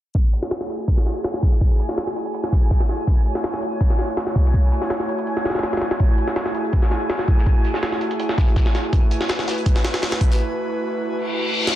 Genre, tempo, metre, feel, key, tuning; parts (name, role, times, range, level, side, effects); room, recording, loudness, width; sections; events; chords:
drum and bass, jungle; 164 BPM; 4/4; straight; F# minor; A4 = 443 Hz
airy breathy pad; sustained chords; 0.1-11.8 s; A3 to C#5; -26 LUFS; right 1 dB; chorus
jungle sampler-style drum kit; drums; 0.1-11.7 s; hi-hat, kick drum, snare drum; -18 LUFS; equal; low-pass filter on hats, low-pass filter on kick, low-pass filter on snare, low-pass filter on room
twinkling granular texture; texture; 1.3-10.4 s; G#5; -33 LUFS; right 1 dB; built-in reverb
modern studio drum kit; drums; 0.2-10.4 s; hi-hat, shaker, snare drum; -37 LUFS; left 4 dB; high-pass filter on hats, high-pass filter on snare, high-pass filter on perc, high-pass filter on room
reverse cymbal; sound effects; 11.2-11.8 s; -21 LUFS; left 3 dB
light reverb, small room ambience; dense, heavily limited modern master, low-pass filter; -18 LUFS; side -13 dB against mid
0.1-11.8 A section
filter sweep on drum 0.1-11.8; filter sweep 0.1-11.8; break 10.4-11.8; reverse cymbal 11.2-11.8
0.1 F#m9